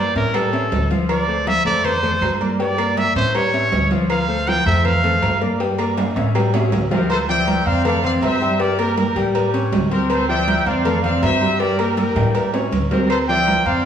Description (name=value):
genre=latin, salsa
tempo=160 BPM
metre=4/4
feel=straight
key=D minor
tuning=A4 = 437 Hz
part: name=bright trumpet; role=melody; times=0.0-5.4 s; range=A4 to G5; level=-20 LUFS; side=right 1 dB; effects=none
part: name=bright concert grand piano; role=accompaniment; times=0.0-13.8 s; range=F3 to C#6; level=-22 LUFS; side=left 2 dB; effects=none
part: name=upright bass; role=bass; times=0.0-13.9 s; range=D2 to A2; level=-23 LUFS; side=equal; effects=none
part: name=congas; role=percussion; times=0.2-13.9 s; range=none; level=-26 LUFS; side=right 2 dB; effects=none
part: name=cowbell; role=percussion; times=0.2-13.7 s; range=none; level=-28 LUFS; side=left 3 dB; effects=none
part: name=agogo bells and timbales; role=percussion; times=0.3-13.8 s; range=none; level=-26 LUFS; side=right 5 dB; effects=none
part: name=claves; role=percussion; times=0.3-6.5, 13.1-13.3 s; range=none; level=-36 LUFS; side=right 6 dB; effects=none
part: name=mellow trumpet section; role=melody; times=6.9-13.9 s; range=G4 to G5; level=-21 LUFS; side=equal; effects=none
room=wet recital hall reverb, RT60 1.3 s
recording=recorded in a church or concert hall, small room ambience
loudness=-16 LUFS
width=side -8 dB against mid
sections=0.0-7.1 A section; 7.1-13.9 B section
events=trumpet solo 0.0-7.1; drum fill 6.0-7.1, 12.2-13.1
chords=0.3 A7; 1.1 Dm7; 1.8 F6; 2.6 Gm; 3.3 A7; 4.1 Dm7; 4.8 F6; 5.6 Gm; 6.4 A7; 7.1 Dm7; 7.9 F6; 8.6 Gm; 9.4 A7; 10.1 Dm7; 10.9 F6; 11.6 Gm; 12.3 A7; 13.1 Dm7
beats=0.34 0.72 | 1.09 1.47 1.84 2.22 | 2.60 2.97 3.35 3.72 | 4.10 4.47 4.85 5.22 | 5.60 5.98 6.35 6.73 | 7.10 7.48 7.85 8.23 | 8.60 8.98 9.35 9.73 | 10.10 10.48 10.85 11.23 | 11.60 11.98 12.35 12.72 | 13.10 13.47 13.85